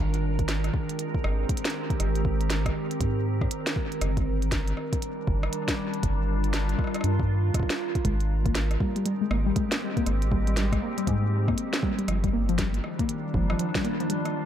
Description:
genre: IDM.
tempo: 119 BPM.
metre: 4/4.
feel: swing 62% on 16ths.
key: Ab lydian.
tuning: A4 = 440 Hz.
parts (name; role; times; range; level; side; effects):
glassy FM pad; sustained chords; 0.0-14.5 s; Eb3 to Bb4; -31 LUFS; right 1 dB; ensemble chorus, built-in reverb.
rubbery square bass; bass; 0.0-13.5 s; G1 to Ab2; -26 LUFS; equal; none.
glitchy drum kit; drums; 0.1-14.3 s; hi-hat, rim click, snare drum; -33 LUFS; equal; overdrive, tape echo.
electronic kick drum; drums; 0.4-13.8 s; none; -29 LUFS; equal; overdrive.
warbly dusty pluck; arpeggios; 8.0-14.2 s; F3 to Bb3; -29 LUFS; left 2 dB; chorus, tape echo.
room: light reverb.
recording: echo-heavy mix.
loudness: -24 LUFS.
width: side -10 dB against mid.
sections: 0.0-14.5 A section.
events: none.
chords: 0.0 Abmaj9; 4.0 Ebmaj9/G; 8.0 Abmaj9; 12.1 Ebmaj9/G.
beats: 0.48 0.99 1.49 | 2.00 2.50 3.01 3.51 | 4.01 4.52 5.02 5.53 | 6.03 6.54 7.04 7.54 | 8.05 8.55 9.06 9.56 | 10.06 10.57 11.07 11.58 | 12.08 12.59 13.09 13.59 | 14.10.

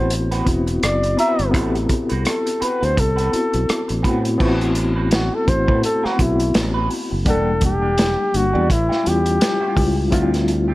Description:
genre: lush 1970s-style soul.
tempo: 84 BPM.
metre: 4/4.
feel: swing 58% on 16ths.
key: A dorian.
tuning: A4 = 444 Hz.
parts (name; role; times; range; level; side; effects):
mellow flugelhorn; melody; 0.0-10.1 s; E4 to E5; -21 LUFS; left 1 dB; none.
reed electric piano; accompaniment; 0.0-10.7 s; G3 to F#5; -22 LUFS; left 2 dB; fast tremolo.
electric guitar through a small old amp; riff; 0.0-10.7 s; Bb3 to B4; -29 LUFS; right 4 dB; wah.
fingered electric bass; bass; 0.0-10.7 s; E1 to A2; -21 LUFS; equal; none.
vintage drum kit; drums; 0.1-10.7 s; crash cymbal, hi-hat, kick drum, rim click, snare drum; -22 LUFS; equal; none.
room: light reverb, small room ambience.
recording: none.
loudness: -16 LUFS.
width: side -18 dB against mid.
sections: 0.0-4.4 A section; 4.4-10.7 B section.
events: flugelhorn solo 4.4-10.7.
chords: 0.0 Am69; 7.3 Em7b5; 8.7 A7b13; 10.1 Dm11.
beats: 0.11 0.83 | 1.54 2.26 2.98 3.69 | 4.41 5.12 5.84 6.55 | 7.27 7.98 8.70 9.41 | 10.13.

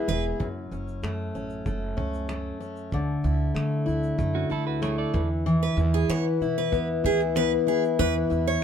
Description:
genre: acoustic pop.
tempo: 95 BPM.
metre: 4/4.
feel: straight.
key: unclear.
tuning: A4 = 436 Hz.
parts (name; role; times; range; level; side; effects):
picked steel-string acoustic guitar; accompaniment; 0.0-8.6 s; F#2 to G#4; -25 LUFS; left 2 dB; none.
picked steel-string acoustic guitar; arpeggios; 0.1-0.2, 5.6-8.6 s; G#4 to C#5; -28 LUFS; right 9 dB; none.
upright bass; bass; 0.1-8.6 s; E1 to E3; -30 LUFS; right 1 dB; none.
cloth-damped thuddy drum kit; drums; 0.1-8.6 s; finger snaps, kick drum, shaker; -31 LUFS; equal; none.
clean electric guitar; second line; 4.3-5.3 s; C#4 to D5; -33 LUFS; right 9 dB; none.
room: little or no reverb.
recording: minimal, uncompressed stereo recording.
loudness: -24 LUFS.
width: side -8 dB against mid.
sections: 0.4-8.6 A section.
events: none.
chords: 0.4 F#m; 2.9 Dsus2; 5.1 E.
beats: | 0.40 1.04 1.67 2.30 | 2.93 3.56 4.20 4.83 | 5.46 6.09 6.73 7.36 | 7.99 8.62.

